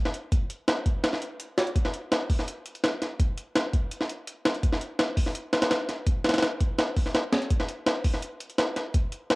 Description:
drum and bass; 167 BPM; 4/4; straight
jungle sampler-style drum kit; drums; 0.1-9.4 s; hi-hat, kick drum, snare drum; -24 LUFS; equal; overdrive, small room ambience, cassette tape
moderate spring reverb, RT60 1.8 s, digital ambience; home recording on cassette; -25 LUFS; side -24 dB against mid
0.0-9.4 A section

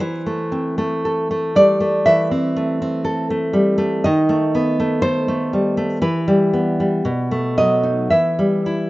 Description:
romantic piece for solo classical guitar; 55-62 BPM; 4/4; rubato; A4 = 441 Hz
nylon-string guitar; solo; 0.0-8.9 s; B2 to E5; -16 LUFS; equal
light reverb; rough home demo mix, nothing above 7.6 kHz; -16 LUFS; side -19 dB against mid
0.0-8.9 A section
0.0 C69/E; 4.1 B7/D#; 6.0 Em; 7.1 B7; 8.1 Em

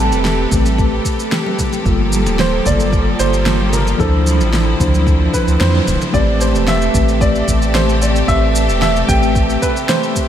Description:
sunset chillout; 112 BPM; 4/4; straight; A minor from 6.1 s; A4 = 439 Hz
warm baby grand piano; melody; 0.0-10.3 s; A4 to A5; -20 LUFS; right 1 dB; tape echo, shimmer reverb
mellow tine electric piano; accompaniment; 0.0-10.3 s; F3 to C5; -19 LUFS; moving between left 4 dB and right 3 dB; medium stereo tremolo, auto-pan, tape echo, shimmer reverb
clear studio string section; sustained chords; 0.0-10.3 s; C3 to B4; -22 LUFS; left 1 dB; shimmer reverb
round analog bass; bass; 0.0-9.6 s; D1 to F2; -16 LUFS; equal
electronic shaker and snare drum; drums; 0.1-10.3 s; -22 LUFS; equal; studio reverb
congas; percussion; 0.1-6.1 s; -27 LUFS; right 2 dB
electronic kick drum; drums; 0.5-10.3 s; -19 LUFS; equal; studio reverb
moderate huge ambient reverb, RT60 8.3 s; dreamy mix soaked in reverb; -12 LUFS; side -10 dB against mid
0.0-6.1 A section; 6.1-10.3 B section
band accent 5.6
0.0 Am9; 1.9 Gm9; 4.0 Dm9; 6.1 Am9

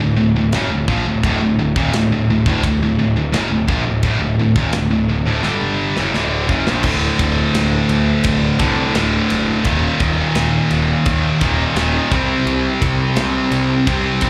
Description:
heavy metal; 85 BPM; 4/4; straight; D phrygian dominant; A4 = 439 Hz
high-gain distorted guitar; riff; 0.0-14.3 s; D2 to C4; -19 LUFS; equal; distortion
fuzz picked electric bass; bass; 0.0-14.3 s; D1 to Eb2; -23 LUFS; equal; overdrive
tight metal drum kit; drums; 0.5-14.3 s; crash cymbal, kick drum, ride cymbal, snare drum, toms; -26 LUFS; equal
light reverb; live gig heard through the venue's PA, club reverb; -17 LUFS; mono
0.0-6.8 A section; 6.8-14.3 B section
drum fill 5.4-6.8
0.0 D; 6.8 D5; 9.7 Eb5; 12.1 C5

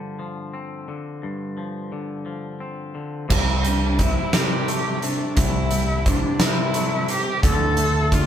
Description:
post-rock; 58 BPM (dotted quarters); 6/8; straight; C major; A4 = 440 Hz
twangy electric guitar; arpeggios; 0.0-8.3 s; G2 to C4; -29 LUFS; left 2 dB; warbly pitch drift
rich cello; melody; 3.3-8.3 s; C4 to A4; -25 LUFS; equal
growling picked electric bass; bass; 3.3-8.3 s; C2 to C3; -24 LUFS; equal; overdrive
huge arena drum kit; drums; 3.3-8.3 s; crash cymbal, hi-hat, kick drum, snare drum; -22 LUFS; right 1 dB
moderate stone room reverb, RT60 1.0 s; band playing live in one room; -19 LUFS; side -9 dB against mid
0.0-3.3 A section; 3.3-8.3 B section
0.0 G7sus4; 3.3 C6; 7.4 D5

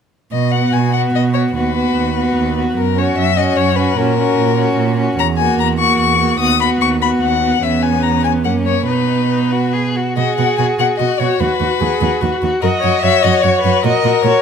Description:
quick classical-period movement for string quartet; 148 BPM; 3/4; rubato; B major; A4 = 442 Hz
rich violin; melody; 0.3-14.4 s; A#4 to D#6; -17 LUFS; left 11 dB
warm cello; bass; 0.3-14.3 s; D#2 to B2; -18 LUFS; right 6 dB
clear violin; second line; 0.5-14.4 s; C#4 to G#4; -21 LUFS; left 5 dB
rich viola; accompaniment; 0.5-14.4 s; A#3 to D#5; -18 LUFS; right 2 dB
moderate recital hall reverb, RT60 1.5 s; close, detailed microphones; -13 LUFS; side -7 dB against mid
0.3-10.2 A section; 10.2-14.4 A section
0.3 B5; 1.6 B/D#; 2.8 F#5; 4.0 F#/A#; 5.2 F#7/E; 6.4 B/D#; 7.6 C#m7/E; 8.4 F#; 8.9 B; 10.2 B5; 11.4 B/D#; 12.6 F#5; 13.8 F#/A#

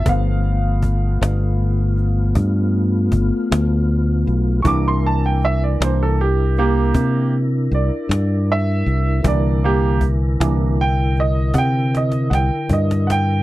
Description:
slow blues; 52 BPM (dotted quarters); 12/8; straight; C mixolydian; A4 = 442 Hz
clear upright piano; accompaniment; 0.0-13.4 s; E3 to D6; -22 LUFS; right 4 dB
mellow tonewheel organ; sustained chords; 0.0-13.4 s; D3 to Bb4; -24 LUFS; left 2 dB; chorus vibrato, slow rotary speaker
fingered electric bass; bass; 0.0-13.4 s; G1 to C3; -17 LUFS; equal
cajon; drums; 0.1-13.3 s; -22 LUFS; equal
little or no reverb; dark, warm production; -16 LUFS; side -16 dB against mid
0.0-13.4 A section
upright piano solo 0.0-13.4; drum fill 11.6-13.4
0.0 G9; 4.7 C9

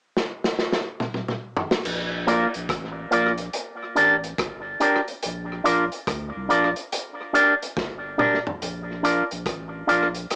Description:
roots reggae; 71 BPM; 4/4; swing 64% on 16ths; Bb major; A4 = 439 Hz
crunchy breakbeat drum kit; drums; 0.2-10.4 s; crash cymbal, hi-hat, kick drum, rim click, snare drum, toms; -26 LUFS; equal; cassette tape, tape echo
soft dub sub bass; bass; 1.9-10.3 s; G1 to D2; -34 LUFS; equal
electric guitar with an envelope filter; accompaniment; 2.3-10.1 s; Bb3 to D5; -20 LUFS; equal; cassette tape, tape echo
moderate small room reverb, RT60 0.5 s; home recording on cassette, small speaker sound; -21 LUFS; side -38 dB against mid
0.0-1.8 A section; 1.8-8.6 B section; 8.6-10.4 C section
drum fill 0.2-1.8, 7.8-8.6
0.0 N.C.; 1.8 Bb; 3.5 Gm; 5.2 Bb; 6.9 Gm; 8.6 Bb

